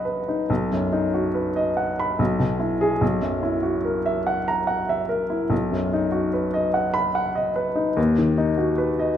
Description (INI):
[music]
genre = classical, romantic character piece for solo piano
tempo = 72 BPM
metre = 3/4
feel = rubato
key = B major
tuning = A4 = 441 Hz
[part]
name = warm baby grand piano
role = solo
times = 0.0-9.2 s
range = B1 to B5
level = -20 LUFS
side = equal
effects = none
[sound]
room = moderate recital hall reverb, RT60 1.7 s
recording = none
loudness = -20 LUFS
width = side -10 dB against mid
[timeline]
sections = 0.5-9.2 A section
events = none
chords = 0.5 B; 2.2 E/B; 3.0 F#7/B; 5.5 B; 8.0 B/D#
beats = | 0.49 1.35 2.19 | 3.02 3.85 4.68 | 5.51 6.35 7.16 | 7.97 8.78